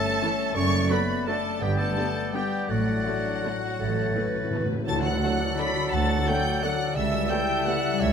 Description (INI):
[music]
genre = classical, orchestral ballroom waltz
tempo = 157-186 BPM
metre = 3/4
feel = rubato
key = D major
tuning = A4 = 441 Hz
[part]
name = rich symphonic violin section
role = melody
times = 0.0-8.1 s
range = F#5 to B6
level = -33 LUFS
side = left 1 dB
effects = none
[part]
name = bright clarinet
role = second line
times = 0.0-8.1 s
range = C#5 to F#5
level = -34 LUFS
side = left 2 dB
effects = none
[part]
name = silver concert flute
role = second line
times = 0.0-8.1 s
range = E5 to A6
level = -36 LUFS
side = left 1 dB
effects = none
[part]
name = warm oboe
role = second line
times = 0.0-8.1 s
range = F#4 to C#5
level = -35 LUFS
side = right 2 dB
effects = none
[part]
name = warm bassoon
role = accompaniment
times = 0.0-8.1 s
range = F#3 to C#4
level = -33 LUFS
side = right 2 dB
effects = none
[part]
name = mellow French horn section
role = sustained chords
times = 0.0-7.8 s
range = F#3 to A4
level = -34 LUFS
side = left 5 dB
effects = none
[part]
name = concert harp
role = arpeggios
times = 0.0-8.1 s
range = F#2 to A5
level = -32 LUFS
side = left 11 dB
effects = none
[part]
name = dark symphonic violin section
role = second line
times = 0.2-8.1 s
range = D4 to B5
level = -33 LUFS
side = left 2 dB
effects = none
[part]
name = rich symphonic viola section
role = accompaniment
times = 0.2-7.7 s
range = D3 to A4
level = -36 LUFS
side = right 2 dB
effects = none
[part]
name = rich symphonic cello section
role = bass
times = 0.6-8.1 s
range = C#2 to A2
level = -31 LUFS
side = right 4 dB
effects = none
[part]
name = rich symphonic double bass section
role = bass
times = 0.6-8.1 s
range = F#1 to D2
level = -32 LUFS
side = right 3 dB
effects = none
[part]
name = cymbal swell and tam-tam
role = percussion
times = 2.7-6.2 s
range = none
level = -39 LUFS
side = left 3 dB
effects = none
[part]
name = timpani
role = percussion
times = 3.8-4.8 s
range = A2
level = -34 LUFS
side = equal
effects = none
[part]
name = warm trombone section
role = sustained chords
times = 5.2-7.8 s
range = D3 to G3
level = -36 LUFS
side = right 6 dB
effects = none
[sound]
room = moderate concert hall reverb, RT60 2.3 s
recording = close, detailed microphones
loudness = -23 LUFS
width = side -7 dB against mid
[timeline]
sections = 0.0-4.9 A section; 4.9-8.1 B section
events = timpani fill 3.8-4.9; band accent 4.9-5.2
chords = 0.0 A7/G; 0.6 D/F#; 1.6 G; 2.7 D/A; 3.8 A; 4.9 D; 7.0 A7/C#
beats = 0.22 | 0.56 0.91 1.28 | 1.62 1.97 2.35 | 2.70 3.07 3.44 | 3.80 4.16 4.54 | 4.89 5.24 5.60 | 5.94 6.28 6.64 | 6.97 7.31 7.67 | 8.01